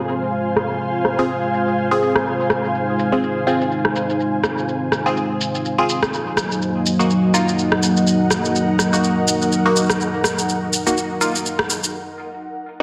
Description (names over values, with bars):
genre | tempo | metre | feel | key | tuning
bass house | 124 BPM | 4/4 | swing 57% on 16ths | F phrygian | A4 = 440 Hz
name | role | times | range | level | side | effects
dark analog pad | sustained chords | 0.0-11.9 s | Gb3 to Eb5 | -23 LUFS | equal | chorus
ethereal airy pad | texture | 0.0-11.9 s | Eb4 to Ab5 | -27 LUFS | equal | ensemble chorus, built-in reverb
electronic shaker and rim click | drums | 0.1-11.9 s | none | -24 LUFS | equal | low-pass filter on perc, soft clipping on snare, low-pass filter on snare, low-pass filter on hats, low-pass filter on room
band-passed chord stab | stabs | 1.2-12.8 s | Bb3 to Ab4 | -25 LUFS | equal | phaser, tape echo
room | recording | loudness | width
wet lush hall reverb, RT60 1.8 s, digital ambience | dense, heavily limited modern master | -19 LUFS | mono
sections
0.0-12.8 A section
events
filter sweep on drum 0.0-12.8; break 11.9-12.8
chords
0.0 Fm; 6.1 Ebm